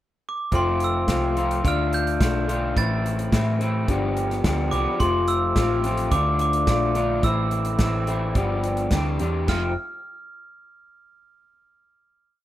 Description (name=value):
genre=indie rock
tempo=107 BPM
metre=4/4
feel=straight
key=F lydian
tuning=A4 = 440 Hz
part: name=glockenspiel with hard plastic mallets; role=melody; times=0.3-9.8 s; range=C6 to A6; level=-28 LUFS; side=right 2 dB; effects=slapback echo
part: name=electric guitar through a small old amp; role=riff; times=0.5-9.7 s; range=F2 to G4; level=-24 LUFS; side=left 3 dB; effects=lush chorus
part: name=hollow-body short-scale picked electric bass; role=bass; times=0.5-9.8 s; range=F1 to A2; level=-26 LUFS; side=right 1 dB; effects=none
part: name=loose indie drum kit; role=drums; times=0.5-9.6 s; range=crash cymbal, hi-hat, kick drum, snare drum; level=-25 LUFS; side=equal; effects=none
room=studio reverb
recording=rough home demo mix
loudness=-20 LUFS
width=side -13 dB against mid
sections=0.0-0.5 pickup bar; 0.5-9.5 verse; 9.5-11.7 final chord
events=none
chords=0.0 N.C.; 0.5 F; 1.6 Dm; 2.8 Am; 3.9 G7; 5.0 F; 6.1 Dm; 7.2 Am; 8.4 G7; 8.9 Cadd9; 9.5 F5